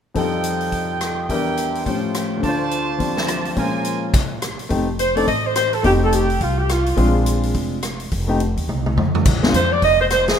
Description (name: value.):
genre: jazz, big band swing.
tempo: 211 BPM.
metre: 4/4.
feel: swing 61% on 8ths.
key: F mixolydian.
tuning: A4 = 437 Hz.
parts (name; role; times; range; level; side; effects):
warm baby grand piano; accompaniment; 0.1-9.5 s; D2 to D5; -22 LUFS; left 3 dB; none.
clear trumpet section; stabs; 0.2-4.1 s; E4 to Eb6; -25 LUFS; right 6 dB; none.
swinging big-band drum kit; drums; 0.2-10.3 s; crash cymbal, hi-hat, kick drum, rim click, snare drum, toms; -23 LUFS; equal; none.
upright bass; bass; 4.7-10.4 s; F1 to F2; -21 LUFS; equal; none.
mellow saxophone section; melody; 5.0-7.2, 9.6-10.4 s; F4 to Eb5; -18 LUFS; right 1 dB; none.
room: light reverb.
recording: minimal, uncompressed stereo recording.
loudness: -17 LUFS.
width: side -8 dB against mid.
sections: 0.2-4.7 A section; 4.7-10.4 B section.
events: drum fill 8.7-9.2.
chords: 0.2 F9; 1.3 Em7b5; 1.9 A7alt; 2.4 Dm7; 3.6 Bbm7; 4.1 N.C.; 4.7 F9; 7.0 Bb9; 8.1 F7(no3); 9.2 Bbsus2.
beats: | 0.15 0.44 0.72 1.00 | 1.29 1.57 1.86 2.14 | 2.43 2.71 3.00 3.28 | 3.57 3.85 4.13 4.42 | 4.70 4.99 5.27 5.56 | 5.84 6.12 6.41 6.69 | 6.98 7.26 7.54 7.83 | 8.11 8.40 8.68 8.97 | 9.25 9.53 9.82 10.10.